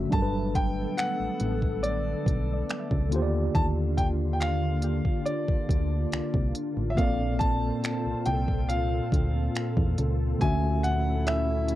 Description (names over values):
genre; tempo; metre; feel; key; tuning
contemporary R&B; 70 BPM; 4/4; straight; unclear; A4 = 440 Hz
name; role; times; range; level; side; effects
mellow tine electric piano; accompaniment; 0.0-11.8 s; Bb2 to E5; -31 LUFS; equal; medium stereo tremolo, cassette tape
glassy FM pad; sustained chords; 0.0-11.8 s; Bb2 to A4; -33 LUFS; left 2 dB; ensemble chorus, built-in reverb, cassette tape
solid FM bass; bass; 0.0-11.8 s; G1 to E2; -28 LUFS; equal; none
soft round pluck; texture; 0.0-10.8 s; F#4 to E5; -46 LUFS; left 1 dB; none
clear concert grand piano; melody; 0.1-11.8 s; D5 to A5; -32 LUFS; equal; tape echo
smooth R&B drum kit; drums; 0.1-11.8 s; finger snaps, hi-hat, kick drum; -28 LUFS; equal; cassette tape
room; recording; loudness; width
little or no reverb; home recording on cassette; -24 LUFS; side -14 dB against mid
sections
0.1-11.8 A section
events
none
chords
0.1 Gmaj9; 3.1 Ebmaj9; 7.0 Bbmaj9; 10.4 Dmaj9